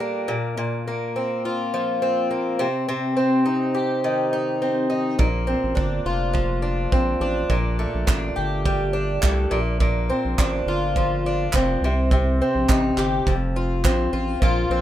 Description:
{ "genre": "acoustic pop", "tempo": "104 BPM", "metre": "4/4", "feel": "swing 55% on 16ths", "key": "Bb major", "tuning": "A4 = 440 Hz", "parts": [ { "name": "fingerpicked twelve-string acoustic guitar", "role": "accompaniment", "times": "0.0-14.8 s", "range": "F2 to A4", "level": "-22 LUFS", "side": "left 1 dB", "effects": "none" }, { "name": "saturated sub bass", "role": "bass", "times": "5.2-14.8 s", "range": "F1 to C2", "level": "-24 LUFS", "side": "equal", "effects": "none" }, { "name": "modern studio drum kit", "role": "drums", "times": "5.2-14.6 s", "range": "handclaps, kick drum", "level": "-22 LUFS", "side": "right 1 dB", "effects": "none" } ], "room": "little or no reverb", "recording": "minimal, uncompressed stereo recording", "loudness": "-20 LUFS", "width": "side -12 dB against mid", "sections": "0.0-14.4 A section", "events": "none", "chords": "0.3 Bbsus2; 2.6 Cm; 5.2 Bbadd9; 7.5 Gmadd9; 9.5 Bbadd9; 11.8 Cm; 13.3 F5" }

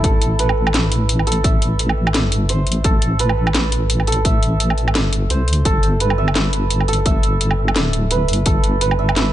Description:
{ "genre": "half-time drum and bass", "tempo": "171 BPM", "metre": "4/4", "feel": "swing 56% on 16ths, half-time", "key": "A minor", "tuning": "A4 = 440 Hz", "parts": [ { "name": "santur", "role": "arpeggios", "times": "0.0-9.3 s", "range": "E4 to A5", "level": "-22 LUFS", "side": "right 3 dB", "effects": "tape echo" }, { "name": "deep soft wobble bass", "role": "bass", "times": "0.0-9.3 s", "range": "D1 to D2", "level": "-18 LUFS", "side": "equal", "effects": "chorus, tube saturation" }, { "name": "drum and bass drum kit", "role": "drums", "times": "0.0-9.2 s", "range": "hi-hat, snare drum, woodblock", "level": "-21 LUFS", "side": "equal", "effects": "none" }, { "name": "electronic kick drum", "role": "drums", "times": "0.0-8.5 s", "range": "none", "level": "-17 LUFS", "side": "equal", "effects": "none" } ], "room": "digital ambience", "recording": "nothing above 10.3 kHz", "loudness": "-15 LUFS", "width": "side -12 dB against mid", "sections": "0.0-9.3 A section", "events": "none", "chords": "0.0 Am; 5.7 G" }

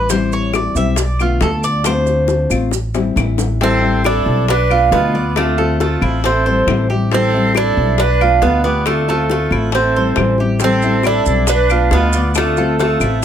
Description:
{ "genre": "latin, Cuban son and guajira", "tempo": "137 BPM", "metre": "4/4", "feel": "straight", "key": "A minor", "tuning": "A4 = 440 Hz", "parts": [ { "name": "nylon-string guitar", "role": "accompaniment", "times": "0.0-13.2 s", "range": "B2 to F4", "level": "-21 LUFS", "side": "left 6 dB", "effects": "none" }, { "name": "Cuban tres", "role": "arpeggios", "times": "0.0-13.2 s", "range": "C4 to E5", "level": "-20 LUFS", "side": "right 3 dB", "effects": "none" }, { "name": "upright bass", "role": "bass", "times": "0.0-13.2 s", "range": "A1 to D2", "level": "-18 LUFS", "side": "equal", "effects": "none" }, { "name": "bongos", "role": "percussion", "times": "0.1-13.2 s", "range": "none", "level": "-23 LUFS", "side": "left 7 dB", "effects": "none" }, { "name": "maracas", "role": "percussion", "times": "0.1-3.6, 10.6-13.2 s", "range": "none", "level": "-26 LUFS", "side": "right 9 dB", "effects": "none" }, { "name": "claves", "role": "percussion", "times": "0.5-13.2 s", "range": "none", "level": "-24 LUFS", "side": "left 8 dB", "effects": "none" }, { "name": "Cuban tres", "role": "melody", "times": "3.6-13.2 s", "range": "A3 to D4", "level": "-18 LUFS", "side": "right 2 dB", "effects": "none" }, { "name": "breathy bright jazz flute", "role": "second line", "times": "3.6-13.2 s", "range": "F4 to B4", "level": "-24 LUFS", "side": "right 4 dB", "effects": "none" } ], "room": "light reverb", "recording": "close, detailed microphones", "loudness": "-13 LUFS", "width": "side -9 dB against mid", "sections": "0.0-3.6 A section; 3.6-13.2 B section", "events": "Cuban tres solo 0.0-3.6; drum fill 2.7-3.6", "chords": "0.0 Am7; 1.0 Bm7b5; 1.9 Dm7; 2.7 Am7; 4.5 Bm7b5; 5.4 Dm7; 6.2 Am7; 8.0 Bm7b5; 8.9 Dm7; 9.7 Am7; 11.5 Bm7b5; 12.4 Dm7" }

